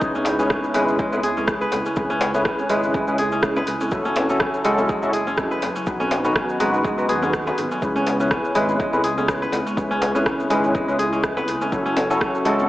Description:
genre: afro house.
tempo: 123 BPM.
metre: 4/4.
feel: swing 56% on 16ths.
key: C# minor.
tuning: A4 = 440 Hz.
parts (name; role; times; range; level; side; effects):
warm analog pad; sustained chords; 0.4-12.7 s; C#3 to F#4; -30 LUFS; equal; chorus, sidechain pumping.
kora; arpeggios; 0.0-12.7 s; G#3 to B4; -24 LUFS; equal; sidechain pumping, dub echo.
tine electric piano; stabs; 0.0-12.7 s; B3 to B4; -22 LUFS; left 1 dB; ensemble chorus, sidechain pumping, dub echo.
smooth synth bass; bass; 0.0-12.7 s; F#1 to D#2; -31 LUFS; equal; sidechain pumping.
afro-pop drum kit; drums; 0.0-12.7 s; cabasa, hi-hat, rim click; -28 LUFS; equal; overdrive, small room ambience, dub echo.
electronic kick drum; drums; 0.0-12.3 s; none; -28 LUFS; equal; overdrive, small room ambience.
djembe; percussion; 0.1-12.7 s; none; -29 LUFS; left 1 dB; none.
room: moderate echo chamber reverb, RT60 1.7 s.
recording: echo-heavy mix, AM radio sound.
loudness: -18 LUFS.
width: side -15 dB against mid.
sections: 0.0-12.7 A section.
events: none.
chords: 0.0 C#m7; 3.9 F#m7; 5.9 B; 7.8 C#m7; 11.7 F#m7.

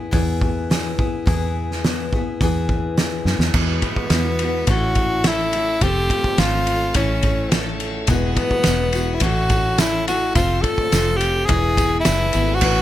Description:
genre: folk rock and heartland rock.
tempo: 106 BPM.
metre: 4/4.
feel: straight.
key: unclear.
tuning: A4 = 440 Hz.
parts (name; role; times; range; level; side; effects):
picked acoustic archtop guitar; accompaniment; 0.0-12.8 s; A2 to B4; -26 LUFS; left 4 dB; none.
fingered electric bass; bass; 0.0-12.8 s; E1 to F#2; -23 LUFS; equal; none.
loose indie drum kit; drums; 0.1-12.8 s; crash cymbal, hi-hat, kick drum, ride cymbal, snare drum; -21 LUFS; equal; none.
bright tenor saxophone; melody; 3.5-12.8 s; B3 to A4; -21 LUFS; equal; none.
tonewheel organ; sustained chords; 3.5-12.8 s; G#3 to D5; -31 LUFS; right 1 dB; slow rotary speaker, overdrive.
tambourine; percussion; 8.1-12.5 s; none; -34 LUFS; right 7 dB; none.
room: little or no reverb.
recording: none.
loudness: -17 LUFS.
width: side -13 dB against mid.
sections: 0.0-3.5 A section; 3.5-12.6 B section.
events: drum fill 3.3.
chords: 0.0 Eadd9; 4.7 A; 5.8 F; 6.9 A; 8.1 Eadd9; 9.2 A; 10.4 F; 11.5 E.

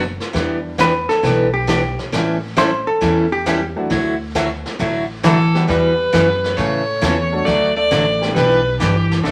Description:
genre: country, western swing.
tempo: 135 BPM.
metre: 4/4.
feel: swing 68% on 8ths.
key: unclear.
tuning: A4 = 443 Hz.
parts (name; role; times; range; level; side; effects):
picked steel-string acoustic guitar; accompaniment; 0.0-9.3 s; C#3 to A4; -22 LUFS; equal; none.
upright bass; bass; 0.0-9.3 s; F#1 to A2; -27 LUFS; equal; none.
vintage brush drum kit; drums; 0.2-9.3 s; brushed snare drum, hi-hat, kick drum, snare drum; -28 LUFS; equal; none.
warm upright piano; accompaniment; 0.3-8.3 s; F#3 to A4; -29 LUFS; equal; none.
hollow-body jazz guitar; second line; 0.8-9.3 s; D3 to C5; -22 LUFS; equal; none.
clear fiddle; melody; 5.2-9.3 s; G4 to D5; -20 LUFS; equal; none.
room: moderate studio reverb, RT60 0.7 s.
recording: vinyl crackle.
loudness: -17 LUFS.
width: mono.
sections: 0.0-5.7 A section; 5.7-9.3 B section.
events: hollow-body jazz guitar solo 0.0-5.7.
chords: 0.3 Em7; 2.1 A7; 3.9 Dadd9; 5.7 Emadd9; 6.6 A; 7.5 D; 8.4 Em7.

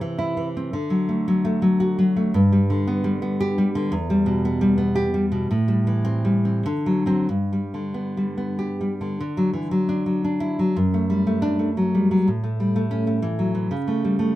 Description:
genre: romantic piece for solo classical guitar.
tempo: 90-128 BPM.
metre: 3/4.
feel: rubato.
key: G major, D major from 9.2 s.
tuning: A4 = 444 Hz.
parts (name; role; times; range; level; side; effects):
nylon-string guitar; solo; 0.0-14.4 s; E2 to G4; -20 LUFS; equal; none.
room: moderate small room reverb, RT60 0.5 s.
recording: band playing live in one room.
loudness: -20 LUFS.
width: side -15 dB against mid.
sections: 0.0-9.2 A section; 9.2-14.4 B section.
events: none.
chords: 0.0 C; 0.7 D; 2.4 G; 3.9 Em; 5.5 Am7; 6.7 D7; 7.3 G; 9.2 D; 10.8 D/F#; 12.3 A; 13.7 A/C#.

